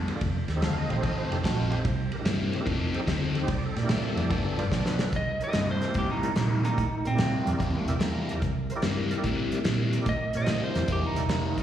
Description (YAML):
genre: electric blues shuffle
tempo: 146 BPM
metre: 4/4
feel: swing 68% on 8ths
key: C mixolydian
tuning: A4 = 439 Hz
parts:
  - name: overdriven electric guitar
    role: riff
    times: 0.0-11.6 s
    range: G2 to A4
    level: -31 LUFS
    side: left 3 dB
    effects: phaser, slapback echo
  - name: vintage muted fingered electric bass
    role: bass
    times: 0.0-11.6 s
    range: F1 to Bb2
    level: -29 LUFS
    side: right 1 dB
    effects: none
  - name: tonewheel organ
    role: accompaniment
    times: 0.1-11.6 s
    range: C4 to Bb5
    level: -37 LUFS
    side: right 3 dB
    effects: slow rotary speaker, overdrive, chorus vibrato, slapback echo
  - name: warm soul drum kit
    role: drums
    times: 0.1-11.6 s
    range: hi-hat, kick drum, ride cymbal, snare drum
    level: -31 LUFS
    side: equal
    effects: none
  - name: clean lap steel guitar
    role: melody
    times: 5.2-11.6 s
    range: C4 to Eb5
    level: -31 LUFS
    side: right 2 dB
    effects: slapback echo
room: light reverb, small room ambience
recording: live gig heard through the venue's PA, recital hall reverb, studio reverb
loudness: -25 LUFS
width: side -10 dB against mid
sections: 0.0-5.1 A section; 5.1-11.6 B section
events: drum fill 4.7-5.1; tonewheel organ fill 7.6-8.4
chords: 0.2 F7; 1.9 C7; 2.7 F7; 3.5 C7; 4.3 G7; 5.1 C7